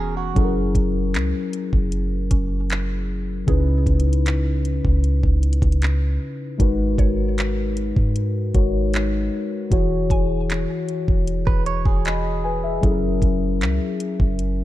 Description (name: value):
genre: contemporary R&B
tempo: 77 BPM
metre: 4/4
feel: straight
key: unclear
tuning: A4 = 440 Hz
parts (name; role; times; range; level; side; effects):
- mellow tine electric piano; accompaniment; 0.0-14.6 s; C#3 to B5; -24 LUFS; left 3 dB; wide subtle chorus
- direct-recorded clean electric guitar; arpeggios; 0.0-0.5, 11.5-12.8 s; F#4 to C#5; -29 LUFS; right 10 dB; spring reverb, digital delay
- soft 808-style bass; bass; 0.0-14.6 s; E1 to G#2; -22 LUFS; equal; none
- mallet-like synth pluck; texture; 0.0-12.0 s; B3 to G#5; -37 LUFS; right 4 dB; chorus, digital delay
- smooth R&B drum kit; drums; 0.4-14.6 s; handclaps, hi-hat, kick drum; -22 LUFS; equal; none
room: little or no reverb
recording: dark, warm production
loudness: -18 LUFS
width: side -15 dB against mid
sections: 0.0-14.6 A section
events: none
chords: 0.4 F#7; 3.5 C#m7; 6.6 G#m9; 9.7 E69; 12.8 F#7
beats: | 0.36 1.14 1.92 2.70 | 3.48 4.26 5.04 5.82 | 6.60 7.38 8.16 8.94 | 9.71 10.49 11.27 12.05 | 12.83 13.61 14.39